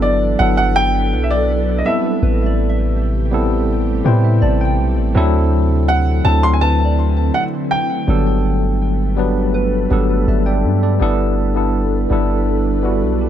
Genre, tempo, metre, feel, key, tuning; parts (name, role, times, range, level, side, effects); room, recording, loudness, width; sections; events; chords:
R&B; 82 BPM; 4/4; straight; G major; A4 = 441 Hz
warm grand piano; melody; 0.0-9.9 s; D5 to C6; -19 LUFS; equal; ping-pong delay
tine electric piano; accompaniment; 0.0-13.3 s; F#3 to A5; -19 LUFS; left 1 dB; medium stereo tremolo
ethereal airy pad; sustained chords; 0.0-13.3 s; C3 to B4; -25 LUFS; right 2 dB; ensemble chorus, built-in reverb, phaser
long sustained 808-style bass; bass; 0.0-13.3 s; G1 to A2; -16 LUFS; equal
soft synth bell; texture; 2.2-11.3 s; B4 to G5; -29 LUFS; right 1 dB; chorus, ping-pong delay
light reverb; -14 LUFS; side -10 dB against mid
0.0-11.0 A section; 11.0-13.3 B section
tine electric piano fill 3.7-5.2
0.0 Gmaj13; 1.9 Am9; 5.2 D7; 8.1 Gmaj9